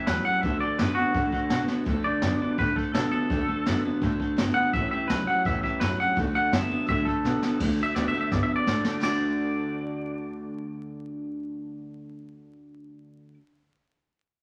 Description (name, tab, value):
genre	rockabilly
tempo	168 BPM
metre	4/4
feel	straight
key	D major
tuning	A4 = 440 Hz
part	twangy electric guitar	melody	0.0-13.3 s	F#4 to F#5	-30 LUFS	equal	none
part	picked steel-string acoustic guitar	accompaniment	0.0-13.4 s	A2 to A4	-38 LUFS	equal	none
part	electric guitar through a small old amp	riff	0.0-13.4 s	A2 to F#4	-31 LUFS	equal	none
part	upright bass	bass	0.1-13.3 s	G1 to B2	-35 LUFS	equal	none
part	jazz brush drum kit	drums	0.1-9.1 s	crash cymbal, hi-hat, kick drum, snare drum	-33 LUFS	equal	none
room	moderate large studio reverb, RT60 1.1 s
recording	vinyl crackle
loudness	-26 LUFS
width	mono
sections	0.0-7.6 A section; 7.6-9.0 B section; 9.0-11.9 C section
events	drum fill 1.7, 7.2-7.6, 8.3-9.0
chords	0.4 D; 4.7 A7; 6.2 D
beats	0.07 | 0.43 0.79 1.15 1.51 | 1.87 2.23 2.59 2.94 | 3.30 3.66 4.02 4.38 | 4.74 5.09 5.45 5.81 | 6.17 6.53 6.88 7.24 | 7.60 7.96 8.31 8.67 | 9.03 9.39 9.75 10.10 | 10.46 10.82 11.18 11.53